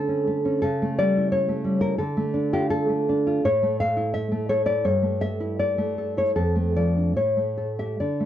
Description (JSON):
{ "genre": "romantic piece for solo classical guitar", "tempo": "69-89 BPM", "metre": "2/4", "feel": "rubato", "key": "unclear", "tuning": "A4 = 436 Hz", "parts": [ { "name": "nylon-string guitar", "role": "solo", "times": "0.0-8.3 s", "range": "F2 to F5", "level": "-21 LUFS", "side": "equal", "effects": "none" } ], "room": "light reverb", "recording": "dry, close 1970s-style studio recording", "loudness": "-21 LUFS", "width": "side -11 dB against mid", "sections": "0.0-8.3 A section", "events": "none", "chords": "0.0 A/D; 0.6 A7/C#; 2.0 Dm; 3.4 A5; 4.9 A5/G; 6.4 Dm/F; 7.1 A7" }